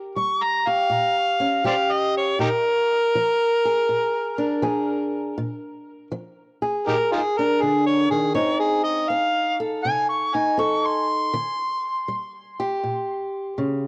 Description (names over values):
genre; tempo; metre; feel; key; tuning
acoustic country blues, solo or duo; 81 BPM; 4/4; swing 67% on 8ths; unclear; A4 = 440 Hz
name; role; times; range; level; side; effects
fingerpicked old ladder-braced acoustic guitar; accompaniment; 0.0-13.9 s; Bb2 to A4; -27 LUFS; equal; cassette tape
overdriven harmonica; melody; 0.2-12.3 s; Eb4 to Db6; -24 LUFS; equal; cassette tape, plate reverb, tape echo
room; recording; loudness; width
moderate studio reverb, RT60 0.6 s; home recording on cassette; -22 LUFS; mono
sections
0.0-13.9 A section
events
none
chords
0.0 Eb7 (rootless); 2.4 Bb7; 8.4 F7; 11.3 Eb